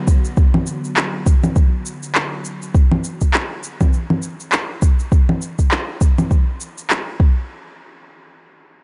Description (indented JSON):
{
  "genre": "organic downtempo",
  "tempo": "101 BPM",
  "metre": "4/4",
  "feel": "swing 58% on 16ths",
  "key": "B minor",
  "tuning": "A4 = 440 Hz",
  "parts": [
    { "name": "warbly tape-like pad", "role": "sustained chords", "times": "0.0-2.7 s", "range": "D3 to F#4", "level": "-32 LUFS", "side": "equal", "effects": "chorus, built-in reverb, phaser, sidechain pumping" },
    { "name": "electronic kick drum", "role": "drums", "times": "0.1-7.3 s", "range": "none", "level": "-16 LUFS", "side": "equal", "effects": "none" },
    { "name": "electronic shaker, congas and handclaps", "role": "drums", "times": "0.1-7.0 s", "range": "none", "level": "-23 LUFS", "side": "equal", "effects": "overdrive" }
  ],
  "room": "little or no reverb",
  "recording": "nothing above 10.7 kHz",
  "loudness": "-18 LUFS",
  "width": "mono",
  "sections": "0.0-7.5 A section; 7.5-8.8 B section",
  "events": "none",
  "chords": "0.0 Bm; 7.2 N.C.",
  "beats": "| 0.37 0.96 1.55 2.15 | 2.74 3.34 3.93 4.53 | 5.12 5.71 6.31 6.90"
}